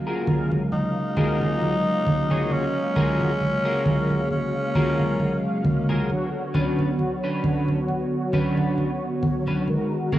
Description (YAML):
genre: vaporwave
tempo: 67 BPM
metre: 4/4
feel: swing 55% on 16ths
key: F# major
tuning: A4 = 439 Hz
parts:
  - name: mellow synth brass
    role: accompaniment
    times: 0.0-10.2 s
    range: C#3 to E#5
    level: -25 LUFS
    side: equal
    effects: ensemble chorus, analog delay
  - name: clean electric guitar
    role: riff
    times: 0.1-10.2 s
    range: B3 to C#5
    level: -30 LUFS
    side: left 1 dB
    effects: analog chorus, low-pass filter, analog delay
  - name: congas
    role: drums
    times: 0.3-10.2 s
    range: none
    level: -24 LUFS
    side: right 1 dB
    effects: none
  - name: growling tenor saxophone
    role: melody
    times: 0.7-5.6 s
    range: C#4 to D#4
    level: -27 LUFS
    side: equal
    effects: tape echo
room: light reverb, digital ambience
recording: cassette tape, small room ambience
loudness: -21 LUFS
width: side -14 dB against mid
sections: 0.0-10.2 A section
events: none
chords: 0.0 F#maj9; 6.1 Bmadd9; 9.7 G#m9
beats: 0.72 1.62 | 2.51 3.41 4.30 5.20 | 6.10 6.99 7.89 8.78 | 9.68